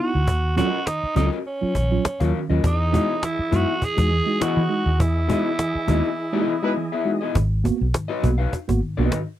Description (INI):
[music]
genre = funk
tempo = 102 BPM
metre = 4/4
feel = straight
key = G# minor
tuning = A4 = 440 Hz
[part]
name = raspy tenor saxophone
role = melody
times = 0.0-7.1 s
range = C#4 to G#4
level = -25 LUFS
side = right 2 dB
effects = none
[part]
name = mellow tine electric piano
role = stabs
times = 0.0-9.2 s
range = G#2 to F#4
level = -26 LUFS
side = right 2 dB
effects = slow stereo tremolo
[part]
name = vintage muted fingered electric bass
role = bass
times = 0.1-9.1 s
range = G#1 to E3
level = -21 LUFS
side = equal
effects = none
[part]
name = cajon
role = drums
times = 0.1-9.3 s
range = none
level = -25 LUFS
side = equal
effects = none
[part]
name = electric guitar at the edge of break-up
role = accompaniment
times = 0.6-9.2 s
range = B3 to E#5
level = -26 LUFS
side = left 6 dB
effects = none
[part]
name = tonewheel organ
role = sustained chords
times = 2.7-7.3 s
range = E3 to D#5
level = -32 LUFS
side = equal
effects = slow rotary speaker, overdrive, chorus vibrato
[part]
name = clear horn section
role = second line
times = 6.6-6.7 s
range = G#3 to B4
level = -26 LUFS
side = left 1 dB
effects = none
[sound]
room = little or no reverb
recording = dry, close 1970s-style studio recording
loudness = -19 LUFS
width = side -12 dB against mid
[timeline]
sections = 0.0-7.4 A section; 7.4-9.4 B section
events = band accent 5.0-7.4; break 6.2-7.4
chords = 0.3 D#m7; 2.6 Emaj7; 7.4 G#m7